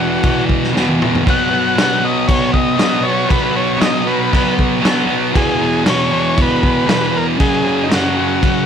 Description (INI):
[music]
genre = garage rock duo or trio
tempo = 117 BPM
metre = 4/4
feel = straight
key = unclear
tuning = A4 = 440 Hz
[part]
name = overdriven combo organ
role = melody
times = 0.0-8.7 s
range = D#4 to F#5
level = -18 LUFS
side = left 1 dB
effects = none
[part]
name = thick fuzz guitar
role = riff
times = 0.0-8.7 s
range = E2 to B3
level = -15 LUFS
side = equal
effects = distortion
[part]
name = vintage drum kit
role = drums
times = 0.2-8.5 s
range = crash cymbal, kick drum, snare drum, toms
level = -18 LUFS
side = equal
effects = none
[sound]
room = light reverb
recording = none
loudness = -12 LUFS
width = side -8 dB against mid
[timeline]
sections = 0.0-8.7 A section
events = drum fill 0.7-1.2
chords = 0.0 E5; 1.2 B; 5.3 E; 7.4 F#5